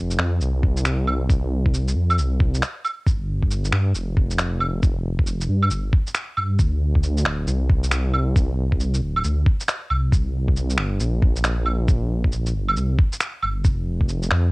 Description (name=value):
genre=future garage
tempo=136 BPM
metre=4/4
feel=swing 64% on 16ths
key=unclear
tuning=A4 = 439 Hz
part: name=swelling detuned saw bass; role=bass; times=0.0-14.5 s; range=D1 to G2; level=-21 LUFS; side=equal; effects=sidechain pumping
part: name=electronic shaker, finger snaps and claves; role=drums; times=0.1-14.4 s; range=none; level=-24 LUFS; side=right 1 dB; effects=cassette tape
part: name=electronic kick drum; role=drums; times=0.6-14.1 s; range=none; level=-19 LUFS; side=equal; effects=cassette tape
room=little or no reverb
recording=home recording on cassette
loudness=-19 LUFS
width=side -25 dB against mid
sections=0.0-14.5 A section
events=break 2.6-3.1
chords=none